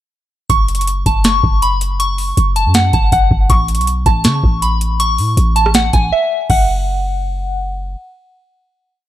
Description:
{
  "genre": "hip hop, trap",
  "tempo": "160 BPM",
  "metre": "4/4",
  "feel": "half-time",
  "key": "F# minor",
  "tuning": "A4 = 441 Hz",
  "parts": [
    { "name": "soft synth bell", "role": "melody", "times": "0.5-7.6 s", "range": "E5 to C#6", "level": "-16 LUFS", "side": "equal", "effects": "chorus, phaser, digital delay" },
    { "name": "warm 808-style bass", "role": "bass", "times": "0.5-8.0 s", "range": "F#1 to C#3", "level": "-16 LUFS", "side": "equal", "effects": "none" },
    { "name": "booming analog drum machine", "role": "drums", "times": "0.5-6.7 s", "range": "crash cymbal, hi-hat, kick drum, rim click, snare drum", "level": "-16 LUFS", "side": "equal", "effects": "none" }
  ],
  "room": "little or no reverb",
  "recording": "none",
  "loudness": "-12 LUFS",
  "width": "side -13 dB against mid",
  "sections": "0.5-6.5 hook; 6.5-9.1 final note",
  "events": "break 6.1-6.5",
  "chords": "0.5 F#5; 3.5 A; 6.5 N.C."
}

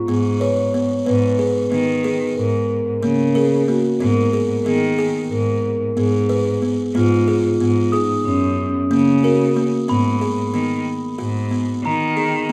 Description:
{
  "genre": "contemporary instrumental, chamber music in an uneven meter",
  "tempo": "184 BPM (eighths)",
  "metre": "9/8",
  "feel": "straight",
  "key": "G# dorian",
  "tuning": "A4 = 440 Hz",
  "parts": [
    { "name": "vibraphone with soft mallets", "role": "second line", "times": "0.0-9.8 s", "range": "C#4 to C#5", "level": "-24 LUFS", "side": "equal", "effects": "none" },
    { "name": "glockenspiel with soft plastic mallets", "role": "texture", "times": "0.0-0.9, 7.9-12.5 s", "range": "A#5 to D#6", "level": "-30 LUFS", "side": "equal", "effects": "none" },
    { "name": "buzzing kalimba", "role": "arpeggios", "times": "0.1-12.5 s", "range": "A#3 to B4", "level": "-23 LUFS", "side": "equal", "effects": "none" },
    { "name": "clear cello", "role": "bass", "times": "0.1-12.5 s", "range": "F#2 to D#3", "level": "-23 LUFS", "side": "equal", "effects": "none" }
  ],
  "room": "moderate recital hall reverb, RT60 1.7 s",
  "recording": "dark, warm production",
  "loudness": "-19 LUFS",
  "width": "mono",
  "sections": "0.0-9.9 A section; 9.9-12.5 B section",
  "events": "none",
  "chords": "0.0 C#7(no3)/G#; 1.1 G#m; 2.4 G#sus4; 4.0 G#madd9; 6.9 G#m; 8.3 F#; 9.9 G#m"
}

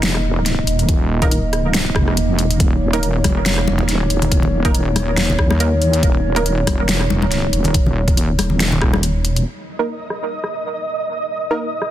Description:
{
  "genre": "deep dubstep",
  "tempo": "140 BPM",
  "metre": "4/4",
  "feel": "swing 56% on 16ths, half-time",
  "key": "unclear",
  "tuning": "A4 = 445 Hz",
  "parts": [
    { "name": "dark analog pad", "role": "sustained chords", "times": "0.0-11.9 s", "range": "Bb3 to Eb5", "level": "-24 LUFS", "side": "right 1 dB", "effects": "lush chorus" },
    { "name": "wobble bass", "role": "bass", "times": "0.0-9.4 s", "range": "Eb1 to Eb2", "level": "-18 LUFS", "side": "equal", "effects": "chorus" },
    { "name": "dubstep drum kit", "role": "drums", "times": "0.0-11.9 s", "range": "hi-hat, rim click, snare drum", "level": "-22 LUFS", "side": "left 1 dB", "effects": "overdrive, low-pass filter on hats, studio reverb, low-pass filter on snare" },
    { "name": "electronic kick drum", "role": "drums", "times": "0.9-8.9 s", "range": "none", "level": "-17 LUFS", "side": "equal", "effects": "overdrive, studio reverb" },
    { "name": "filtered dub chord stab", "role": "stabs", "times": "1.2-6.5, 9.8-11.7 s", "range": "Bb3 to Bb4", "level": "-26 LUFS", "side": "right 3 dB", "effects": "chorus, dub echo" },
    { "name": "congas", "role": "percussion", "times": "3.2-9.0 s", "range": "none", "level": "-24 LUFS", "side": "left 3 dB", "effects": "none" },
    { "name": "flickering grainy texture", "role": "texture", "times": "9.7-11.9 s", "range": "Eb5", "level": "-23 LUFS", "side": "right 2 dB", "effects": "built-in reverb" }
  ],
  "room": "little or no reverb",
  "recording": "dense, heavily limited modern master",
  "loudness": "-15 LUFS",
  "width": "side -12 dB against mid",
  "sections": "0.0-9.5 A section; 9.5-11.9 B section",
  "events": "break 9.0-9.5; filter sweep on analog synth pad 9.5-11.9",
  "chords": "0.0 Eb5"
}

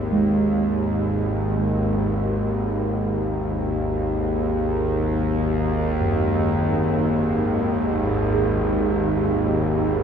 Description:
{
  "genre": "dark ambient drone",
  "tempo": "free time",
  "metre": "none",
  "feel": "none",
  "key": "unclear",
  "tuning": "A4 = 438 Hz",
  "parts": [
    { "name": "bowed-like drone", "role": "drone", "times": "0.0-10.0 s", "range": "G#1 to D#2", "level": "-20 LUFS", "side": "equal", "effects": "built-in reverb" },
    { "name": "gamelan-type bossed gongs", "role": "arpeggios", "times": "0.1-10.0 s", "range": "F#2 to G#4", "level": "-27 LUFS", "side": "right 2 dB", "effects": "analog delay, shimmer reverb" }
  ],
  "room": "wet spring reverb, RT60 2.7 s",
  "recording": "echo-heavy mix, studio ambience",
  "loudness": "-20 LUFS",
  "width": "side -7 dB against mid",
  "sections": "0.0-10.0 A section",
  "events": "fade-in on synth drone 0.0-10.0",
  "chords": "0.0 G#5"
}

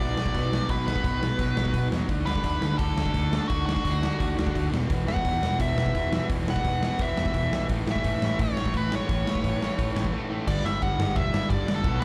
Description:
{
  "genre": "punk rock",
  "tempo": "172 BPM",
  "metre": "4/4",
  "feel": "straight",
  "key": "unclear",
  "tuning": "A4 = 442 Hz",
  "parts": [
    { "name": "nasal lead guitar with a parked wah", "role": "melody", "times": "0.0-12.0 s", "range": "F#4 to F#5", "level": "-33 LUFS", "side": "equal", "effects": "overdrive, slapback echo" },
    { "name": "distorted electric guitar", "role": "riff", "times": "0.0-12.0 s", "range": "E2 to D4", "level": "-35 LUFS", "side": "equal", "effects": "distortion, slapback echo" },
    { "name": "overdriven semi-hollow guitar", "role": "riff", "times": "0.0-12.0 s", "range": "E2 to D4", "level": "-35 LUFS", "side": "equal", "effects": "none" },
    { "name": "overdriven picked electric bass", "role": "bass", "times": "0.0-12.0 s", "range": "E1 to E2", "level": "-31 LUFS", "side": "equal", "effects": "none" },
    { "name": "big rock drum kit", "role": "drums", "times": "0.0-12.0 s", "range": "crash cymbal, hi-hat, kick drum, snare drum", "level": "-31 LUFS", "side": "equal", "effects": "none" }
  ],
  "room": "little or no reverb",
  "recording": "live gig heard through the venue's PA, club reverb",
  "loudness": "-26 LUFS",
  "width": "mono",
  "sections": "0.0-10.5 A section; 10.5-12.0 B section",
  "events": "break 10.1-10.5",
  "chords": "0.0 Bm; 2.1 D; 4.7 E5; 7.7 A; 10.5 G5"
}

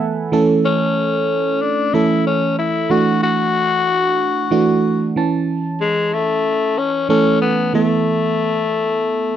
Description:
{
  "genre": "pop",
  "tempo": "93 BPM",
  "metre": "4/4",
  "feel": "straight",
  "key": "A major",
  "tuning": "A4 = 439 Hz",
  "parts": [
    { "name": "FM electric piano", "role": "accompaniment", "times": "0.0-9.4 s", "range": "E3 to B5", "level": "-18 LUFS", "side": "right 4 dB", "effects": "chorus" },
    { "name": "raspy tenor saxophone", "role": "melody", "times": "0.7-9.4 s", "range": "G#3 to F#4", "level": "-18 LUFS", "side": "left 5 dB", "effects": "slapback echo" }
  ],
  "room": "moderate booth ambience, RT60 0.2 s",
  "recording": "dry, close 1970s-style studio recording",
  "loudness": "-15 LUFS",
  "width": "side -10 dB against mid",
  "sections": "0.0-9.4 A section",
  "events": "FM electric piano fill 0.0-0.3",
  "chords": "0.3 A; 2.9 Dadd9; 5.2 A; 7.7 Esus4"
}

